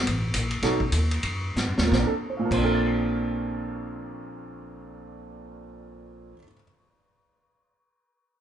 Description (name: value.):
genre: jazz, small-group swing and bop.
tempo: 162-226 BPM.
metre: 4/4.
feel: swing 60% on 8ths.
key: Bb major.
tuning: A4 = 442 Hz.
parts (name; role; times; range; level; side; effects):
upright bass; bass; 0.0-6.3 s; A1 to Ab2; -28 LUFS; left 1 dB; none.
vintage drum kit; drums; 0.1-2.6 s; crash cymbal, hi-hat, kick drum, ride cymbal, snare drum; -29 LUFS; equal; none.
warm grand piano; accompaniment; 0.6-6.6 s; Bb2 to C7; -28 LUFS; right 2 dB; none.
room: light reverb.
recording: band playing live in one room, nothing above 11.0 kHz.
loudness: -23 LUFS.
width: side -9 dB against mid.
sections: 0.0-1.9 A section; 1.9-4.9 B section.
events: slowing down 0.0-1.9; drum fill 1.6-1.9.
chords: 0.0 N.C.; 0.6 B7; 1.9 Bbmaj9.